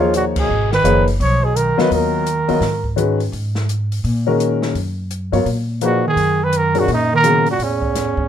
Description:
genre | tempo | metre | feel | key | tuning
modal jazz | 169 BPM | 4/4 | swing 63% on 8ths | G# dorian | A4 = 441 Hz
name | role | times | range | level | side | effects
breathy trumpet | melody | 0.0-2.9, 5.8-8.3 s | C#4 to C#5 | -18 LUFS | right 1 dB | none
mellow bass clarinet | second line | 0.0-2.9, 5.8-8.3 s | E2 to E#3 | -22 LUFS | right 5 dB | none
warm baby grand piano | accompaniment | 0.0-7.4 s | C#3 to D#5 | -18 LUFS | left 3 dB | none
upright bass | bass | 0.0-8.3 s | F#1 to A#2 | -21 LUFS | equal | none
open jazz drum kit | drums | 0.1-8.2 s | crash cymbal, hi-hat, kick drum, snare drum | -28 LUFS | left 1 dB | none
room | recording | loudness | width
moderate studio reverb, RT60 0.6 s | minimal, uncompressed stereo recording | -15 LUFS | side -9 dB against mid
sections
0.0-8.3 A section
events
band accent 0.3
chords
0.0 G#m69; 3.3 D#m; 7.6 A

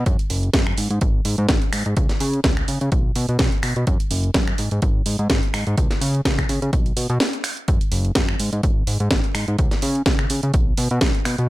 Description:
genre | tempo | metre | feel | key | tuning
filtered disco house | 126 BPM | 4/4 | swing 55% on 16ths | G# minor | A4 = 439 Hz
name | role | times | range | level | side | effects
fat analog bass | bass | 0.0-11.5 s | F#1 to C#3 | -22 LUFS | equal | sidechain pumping
electronic kick drum | drums | 0.1-11.1 s | none | -21 LUFS | equal | none
house drum kit | drums | 0.1-11.5 s | finger snaps, hi-hat, snare drum | -23 LUFS | equal | sidechain pumping on hats
room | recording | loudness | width
little or no reverb | none | -18 LUFS | side -18 dB against mid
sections
0.0-11.5 A section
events
break 7.2-7.7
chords
none

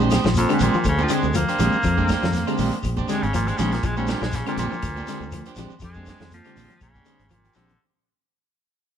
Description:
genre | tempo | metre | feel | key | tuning
afrobeat | 121 BPM | 4/4 | swing 55% on 16ths | Bb mixolydian | A4 = 440 Hz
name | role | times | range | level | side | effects
tine electric piano | accompaniment | 0.0-7.7 s | Ab3 to G4 | -28 LUFS | right 2 dB | overdrive, fast stereo tremolo
electric guitar at the edge of break-up | arpeggios | 0.0-7.7 s | D3 to F3 | -28 LUFS | left 7 dB | none
electric guitar at the edge of break-up | stabs | 0.0-7.7 s | Ab3 to C5 | -28 LUFS | right 4 dB | spring reverb
fingered electric bass | bass | 0.0-7.8 s | Ab1 to F2 | -25 LUFS | equal | none
shekere | percussion | 0.0-7.8 s | none | -33 LUFS | left 3 dB | none
warm soul drum kit | drums | 0.1-7.8 s | hi-hat, kick drum, snare drum | -29 LUFS | equal | none
claves | percussion | 0.1-7.4 s | none | -41 LUFS | left 8 dB | none
congas | percussion | 0.1-7.8 s | none | -30 LUFS | right 4 dB | none
raspy baritone saxophone | melody | 0.4-7.8 s | F2 to Bb3 | -26 LUFS | equal | none
room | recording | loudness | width
moderate stone room reverb, RT60 1.4 s | band playing live in one room | -19 LUFS | side -9 dB against mid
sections
0.0-7.8 A section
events
fade-out 0.0-7.8; baritone saxophone solo 0.0-7.8; drum fill 6.8-7.8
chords
0.0 Bb13

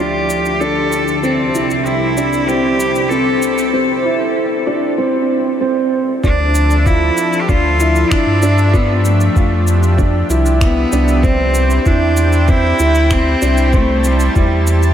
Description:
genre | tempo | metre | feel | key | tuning
piano and strings electronica | 96 BPM | 4/4 | straight | D minor | A4 = 440 Hz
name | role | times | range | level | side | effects
bright cello | melody | 0.0-14.9 s | G3 to A4 | -18 LUFS | equal | low-pass filter, analog delay
lush unison pad | sustained chords | 0.0-14.9 s | C2 to A5 | -22 LUFS | equal | chorus, sidechain pumping
dark upright piano | riff | 0.0-14.9 s | C4 to F4 | -17 LUFS | right 1 dB | wide subtle chorus, analog delay
electronic shaker and finger snaps | drums | 0.3-14.9 s | none | -27 LUFS | equal | high-pass filter on perc, studio reverb, high-pass filter on snare
warm sub bass | bass | 6.2-14.9 s | C2 to G2 | -14 LUFS | equal | sidechain pumping
electronic kick drum | drums | 6.2-14.5 s | none | -14 LUFS | equal | studio reverb
room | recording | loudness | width
wet huge ambient reverb, RT60 8.8 s | dreamy mix soaked in reverb | -12 LUFS | side -10 dB against mid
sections
0.0-6.2 A section; 6.2-14.9 B section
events
build-up 0.0-6.2; filter sweep on analog synth pad 0.0-6.2; drop 6.2-14.9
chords
0.0 Dmadd9; 1.2 C; 6.2 Dmadd9; 11.2 C

